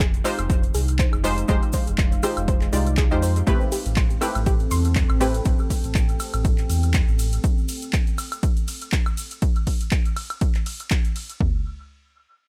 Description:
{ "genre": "deep house", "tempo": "121 BPM", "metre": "4/4", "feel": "swing 55% on 16ths", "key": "A minor", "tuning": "A4 = 440 Hz", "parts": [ { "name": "soft round pluck", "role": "arpeggios", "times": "0.0-5.2 s", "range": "G4 to C6", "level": "-35 LUFS", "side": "equal", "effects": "chorus, sidechain pumping, analog delay" }, { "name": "filtered dub chord stab", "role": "stabs", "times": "0.0-5.4 s", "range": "Ab3 to D5", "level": "-29 LUFS", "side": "equal", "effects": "lush chorus, cassette tape, tape echo" }, { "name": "sub bass with octave", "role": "bass", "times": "0.0-7.4 s", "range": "F1 to F2", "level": "-26 LUFS", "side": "equal", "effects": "tube saturation, sidechain pumping" }, { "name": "punchy analog drum machine", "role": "drums", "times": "0.0-11.5 s", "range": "kick drum, toms", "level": "-23 LUFS", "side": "equal", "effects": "overdrive" }, { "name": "punchy analog drum machine", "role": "drums", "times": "0.0-11.4 s", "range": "handclaps, hi-hat, ride cymbal, woodblock", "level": "-33 LUFS", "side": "equal", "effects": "overdrive, dub echo" }, { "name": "tube shaker", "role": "percussion", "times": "0.0-9.4 s", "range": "none", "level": "-40 LUFS", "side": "equal", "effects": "none" }, { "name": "deep dark ambient pad", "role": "texture", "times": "0.3-7.4 s", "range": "Ab3 to G5", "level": "-35 LUFS", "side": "equal", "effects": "chorus, built-in reverb, sidechain pumping" } ], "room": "digital ambience", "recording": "echo-heavy mix", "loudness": "-22 LUFS", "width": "mono", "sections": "0.0-11.4 A section; 11.4-12.5 B section", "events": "drop 0.0-11.4", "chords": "0.0 Fm7; 3.5 Am7; 7.4 N.C." }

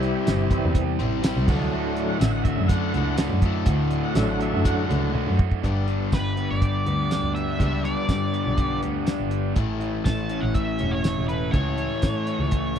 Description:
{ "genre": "classic rock", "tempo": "122 BPM", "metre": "4/4", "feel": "straight", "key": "unclear", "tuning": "A4 = 436 Hz", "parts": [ { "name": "bright tonewheel organ", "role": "sustained chords", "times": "0.0-12.8 s", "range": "E3 to F#5", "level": "-31 LUFS", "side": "right 1 dB", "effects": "slow rotary speaker, overdrive" }, { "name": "crunchy overdriven guitar", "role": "riff", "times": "0.0-12.8 s", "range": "D2 to C4", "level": "-28 LUFS", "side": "left 13 dB", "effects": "none" }, { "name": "raw garage guitar", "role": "riff", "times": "0.0-12.8 s", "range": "D2 to C5", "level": "-30 LUFS", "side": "right 21 dB", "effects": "overdrive" }, { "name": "cloth-damped thuddy drum kit", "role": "drums", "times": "0.0-12.8 s", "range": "crash cymbal, hi-hat, kick drum, snare drum, tambourine, toms", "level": "-22 LUFS", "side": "equal", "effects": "none" }, { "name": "muted double bass", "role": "bass", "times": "0.3-12.8 s", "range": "E1 to A2", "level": "-26 LUFS", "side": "equal", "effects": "none" }, { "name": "octave-fuzz lead guitar", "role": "melody", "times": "6.1-12.8 s", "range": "B4 to A5", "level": "-30 LUFS", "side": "right 1 dB", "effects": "wah, distortion" } ], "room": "little or no reverb", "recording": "dry, close 1970s-style studio recording", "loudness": "-21 LUFS", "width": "side -8 dB against mid", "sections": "0.0-5.6 A section; 5.6-12.8 B section", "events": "tonewheel organ solo 0.0-5.6; drum fill 5.1-5.6", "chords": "0.0 C; 1.5 D; 5.6 G; 9.6 A" }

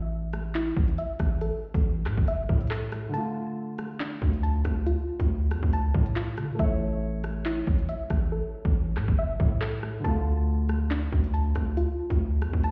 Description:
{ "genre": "hip hop, drill", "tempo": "139 BPM", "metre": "4/4", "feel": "half-time", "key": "D harmonic minor", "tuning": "A4 = 438 Hz", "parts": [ { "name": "soft round pluck", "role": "arpeggios", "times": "0.0-12.7 s", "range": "D4 to A5", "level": "-37 LUFS", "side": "equal", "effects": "chorus, low-pass filter, delay" }, { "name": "hard-hitting 808-style bass", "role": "bass", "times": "0.0-12.7 s", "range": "G1 to D3", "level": "-30 LUFS", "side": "equal", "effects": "none" }, { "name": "drill drum kit", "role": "drums", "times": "0.3-12.7 s", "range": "handclaps, hi-hat, kick drum, rim click", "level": "-30 LUFS", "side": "equal", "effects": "none" }, { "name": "dark concert grand piano", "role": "accompaniment", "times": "3.1-12.7 s", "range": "D3 to C#5", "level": "-38 LUFS", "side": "equal", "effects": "low-pass filter" } ], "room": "little or no reverb", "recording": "heard muffled through a wall, stone room reverb, EQ", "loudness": "-27 LUFS", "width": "mono", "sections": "0.0-12.7 A section", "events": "filter sweep 0.0-3.1; break 3.1-4.0; hi-hats muted 8.3-10.0", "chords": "0.0 A5; 3.1 Dm; 6.6 A; 10.0 Dm" }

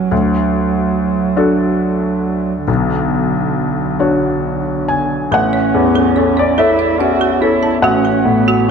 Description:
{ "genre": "neoclassical piano and strings", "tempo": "47 BPM (dotted quarters)", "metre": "6/8", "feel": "uneven beats, rubato", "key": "unclear", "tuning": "A4 = 440 Hz", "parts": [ { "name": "muted cello", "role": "second line", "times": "0.0-8.7 s", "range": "D3 to F#4", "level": "-17 LUFS", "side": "right 8 dB", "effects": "none" }, { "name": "felt-muted upright piano", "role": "accompaniment", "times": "0.0-8.7 s", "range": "A1 to G#5", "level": "-14 LUFS", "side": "left 4 dB", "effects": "none" }, { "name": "folk marimba with hard mallets", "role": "arpeggios", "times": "5.3-8.6 s", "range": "F#4 to A5", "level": "-21 LUFS", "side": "right 3 dB", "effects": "slapback echo" } ], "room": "moderate scoring stage reverb, RT60 1.8 s", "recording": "dark, warm production", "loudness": "-12 LUFS", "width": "side -6 dB against mid", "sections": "0.0-5.3 A section; 5.3-8.7 B section", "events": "none", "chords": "0.1 D; 2.7 Bmadd9; 5.3 A; 7.8 F#m/A" }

